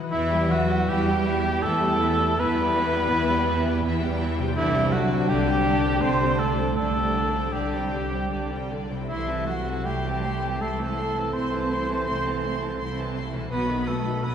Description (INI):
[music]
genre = cinematic, emotional film score for orchestra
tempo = 76-84 BPM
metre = 3/4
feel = rubato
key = E minor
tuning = A4 = 438 Hz
[part]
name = concert harp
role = arpeggios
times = 0.0-14.3 s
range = B2 to F#5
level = -34 LUFS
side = left 4 dB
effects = none
[part]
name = rich symphonic violin section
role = melody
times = 0.1-14.3 s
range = D5 to D#6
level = -39 LUFS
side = left 2 dB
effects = none
[part]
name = mellow hollow silver concert flute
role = second line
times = 0.1-14.3 s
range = E5 to C6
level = -31 LUFS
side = equal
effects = none
[part]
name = rich symphonic violin section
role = second line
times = 0.1-14.3 s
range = C4 to G4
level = -36 LUFS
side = left 2 dB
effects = none
[part]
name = warm cor anglais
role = second line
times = 0.1-14.3 s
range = E4 to C5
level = -28 LUFS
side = right 1 dB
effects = none
[part]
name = rich symphonic viola section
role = accompaniment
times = 0.1-14.3 s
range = D3 to A3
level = -33 LUFS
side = right 2 dB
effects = none
[part]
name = warm French horn section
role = sustained chords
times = 0.1-14.3 s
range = B2 to A4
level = -31 LUFS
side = left 4 dB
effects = none
[part]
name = clear chamber double bass section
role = bass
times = 0.1-14.3 s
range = B1 to E2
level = -29 LUFS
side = right 2 dB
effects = none
[part]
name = warm symphonic cello section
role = bass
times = 0.1-14.3 s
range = E3 to C4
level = -31 LUFS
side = right 2 dB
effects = none
[sound]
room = wet scoring stage reverb, RT60 2.0 s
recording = heard from further back in the room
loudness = -22 LUFS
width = side -8 dB against mid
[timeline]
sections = 0.1-14.3 A section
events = none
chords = 0.1 Em; 4.6 Csus2; 9.1 Am/C; 13.5 B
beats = | 0.11 0.87 1.63 | 2.38 3.11 3.83 | 4.56 5.28 6.00 | 6.76 7.54 8.31 | 9.09 9.85 10.60 | 11.33 12.06 12.79 | 13.51 14.24